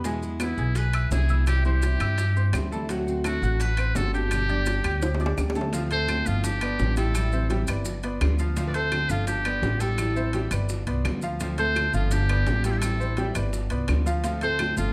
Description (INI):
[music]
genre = latin, Cuban son and guajira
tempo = 169 BPM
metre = 4/4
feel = straight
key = unclear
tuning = A4 = 439 Hz
[part]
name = fingerpicked steel-string acoustic guitar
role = accompaniment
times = 0.0-14.9 s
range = B2 to G4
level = -36 LUFS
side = equal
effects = none
[part]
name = clear baby grand piano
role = arpeggios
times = 0.0-14.9 s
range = F3 to G#6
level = -35 LUFS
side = equal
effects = none
[part]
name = upright bass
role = bass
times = 0.0-14.9 s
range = G1 to G2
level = -28 LUFS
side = equal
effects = none
[part]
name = bongos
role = percussion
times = 0.0-14.8 s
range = none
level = -39 LUFS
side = equal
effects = none
[part]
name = maracas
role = percussion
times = 0.0-14.9 s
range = none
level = -44 LUFS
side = equal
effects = none
[part]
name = timbales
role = percussion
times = 0.0-14.8 s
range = none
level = -38 LUFS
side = equal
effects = none
[part]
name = trumpet with metal mute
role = melody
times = 0.4-14.9 s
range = E4 to D5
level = -31 LUFS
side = equal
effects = none
[part]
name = flamenco guitar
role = second line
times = 0.4-14.9 s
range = B3 to B4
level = -39 LUFS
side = equal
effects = none
[part]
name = claves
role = percussion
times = 0.4-14.8 s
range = none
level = -39 LUFS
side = equal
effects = none
[sound]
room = light reverb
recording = none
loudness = -25 LUFS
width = mono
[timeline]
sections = 0.0-5.7 A section; 5.7-14.9 B section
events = drum fill 5.0-5.7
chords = 0.0 E; 1.5 C; 2.9 D7; 4.3 G; 5.7 Dm7; 6.4 G7; 7.2 Am7; 7.9 G7; 8.6 Dm7; 9.3 G7; 10.0 Am7; 10.7 G7; 11.4 Dm7; 12.1 G7; 12.8 Am7; 13.5 G7; 14.2 Dm7